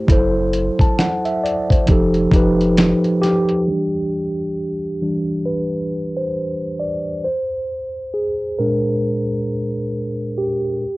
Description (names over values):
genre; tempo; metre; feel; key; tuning
lo-fi hip hop; 67 BPM; 4/4; swing 59% on 16ths; unclear; A4 = 440 Hz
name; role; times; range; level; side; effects
mellow tine electric piano; accompaniment; 0.0-11.0 s; A#2 to A5; -18 LUFS; equal; medium stereo tremolo, low-pass filter, cassette tape
soft dub sub bass; bass; 0.1-2.9 s; F1 to F#1; -24 LUFS; equal; none
dusty soul sampler-style drum kit; drums; 0.1-3.7 s; hi-hat, kick drum, snare drum; -15 LUFS; equal; overdrive, vintage 12-bit sampler grit, cassette tape
room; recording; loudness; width
moderate studio ambience, RT60 0.5 s; home recording on cassette, low-pass filter; -17 LUFS; side -21 dB against mid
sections
0.0-3.7 A section; 3.7-11.0 B section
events
tine electric piano solo 3.7-11.0; filter sweep 3.7-11.0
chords
0.1 F#m7b5; 1.9 F9; 3.7 Em7; 7.2 A#9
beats
| 0.08 0.98 1.87 2.77 | 3.67 4.56 5.46 6.35 | 7.25 8.14 9.04 9.93 | 10.83